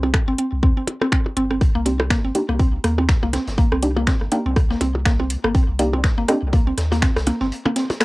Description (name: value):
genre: minimal techno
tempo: 122 BPM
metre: 4/4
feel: swing 57% on 16ths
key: C minor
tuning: A4 = 440 Hz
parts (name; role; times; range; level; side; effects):
- mallet-like synth pluck; riff; 0.0-8.0 s; Bb3 to C4; -23 LUFS; equal; chorus, sidechain pumping, cassette tape, tape echo
- punchy sub bass; bass; 0.0-7.5 s; G1 to Eb2; -24 LUFS; equal; sidechain pumping
- electronic percussion blips and rim click; percussion; 0.0-8.0 s; none; -24 LUFS; right 1 dB; none
- electronic kick drum; drums; 0.1-7.1 s; none; -18 LUFS; equal; none
- house drum kit; drums; 0.1-8.0 s; finger snaps, hi-hat; -23 LUFS; equal; none
- vintage drum kit; drums; 1.6-8.0 s; hi-hat, snare drum; -36 LUFS; equal; sidechain pumping on hats, high-pass filter on hats, high-pass filter on snare, high-pass filter on room
- filtered dub chord stab; stabs; 1.9-6.4 s; Bb3 to G4; -24 LUFS; equal; chorus, cassette tape, tape echo
room: moderate booth ambience, RT60 0.2 s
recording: home recording on cassette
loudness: -17 LUFS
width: side -21 dB against mid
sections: 0.0-8.0 A section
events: filter sweep on synth stab 0.0-8.0; break 7.5-8.0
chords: 0.0 Cm7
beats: 0.14 0.63 1.12 | 1.61 2.10 2.60 3.09 | 3.58 4.07 4.56 5.05 | 5.55 6.04 6.53 7.02 | 7.51 8.01